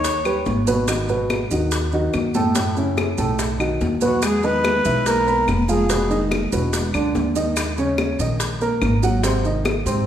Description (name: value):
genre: Afro-Cuban jazz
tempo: 144 BPM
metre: 4/4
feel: straight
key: unclear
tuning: A4 = 439 Hz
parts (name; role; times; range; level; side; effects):
- breathy trumpet; melody; 0.0-0.6, 4.0-6.3 s; F#4 to C#5; -21 LUFS; equal; none
- buzzing kalimba; second line; 0.0-0.6, 4.0-6.3 s; F#3 to C#6; -28 LUFS; equal; none
- warm baby grand piano; accompaniment; 0.0-10.1 s; A2 to B5; -22 LUFS; right 1 dB; none
- upright bass; bass; 0.0-10.1 s; E1 to G#2; -24 LUFS; equal; none
- bongos; percussion; 0.0-10.1 s; none; -29 LUFS; left 3 dB; none
- congas; percussion; 0.0-9.9 s; none; -28 LUFS; left 2 dB; none
- maracas; percussion; 0.0-10.1 s; none; -32 LUFS; right 6 dB; none
- claves; percussion; 0.3-9.9 s; none; -31 LUFS; left 4 dB; none
room: wet recital hall reverb, RT60 1.4 s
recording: recorded in a church or concert hall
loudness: -18 LUFS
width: side -10 dB against mid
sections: 0.0-4.2 A section; 4.2-10.1 B section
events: none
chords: 0.0 D#aug7; 0.9 G#m7; 2.6 F#m7; 3.4 B7; 4.2 E5; 5.9 Fm7b5; 6.7 E5; 7.6 D#m7; 9.2 G#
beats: 0.04 0.46 | 0.88 1.30 1.72 2.14 | 2.55 2.97 3.39 3.81 | 4.22 4.64 5.06 5.48 | 5.90 6.31 6.73 7.15 | 7.57 7.98 8.40 8.82 | 9.23 9.65